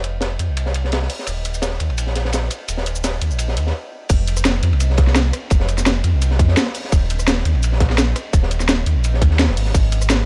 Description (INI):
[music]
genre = liquid drum and bass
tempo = 170 BPM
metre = 4/4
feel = straight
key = F minor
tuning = A4 = 440 Hz
[part]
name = sub bass with octave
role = bass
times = 0.0-10.3 s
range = Eb1 to F2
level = -21 LUFS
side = equal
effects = none
[part]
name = crunchy breakbeat drum kit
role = drums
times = 0.0-10.3 s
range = hi-hat, ride cymbal, snare drum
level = -28 LUFS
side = equal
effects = high-pass filter on cymbals, studio reverb, high-pass filter on hats, high-pass filter on snare, high-pass filter on room
[part]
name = drum and bass drum kit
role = drums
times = 0.0-10.2 s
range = cabasa, crash cymbal, hi-hat, rim click, snare drum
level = -24 LUFS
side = equal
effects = studio reverb
[part]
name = electronic kick drum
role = drums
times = 4.1-9.8 s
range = none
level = -18 LUFS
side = equal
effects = studio reverb
[sound]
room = studio reverb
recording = dark, warm production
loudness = -19 LUFS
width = mono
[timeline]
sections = 0.0-4.1 A section; 4.1-10.3 B section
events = build-up 0.0-4.1; stop 3.7-4.1; drop 4.1-10.3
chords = none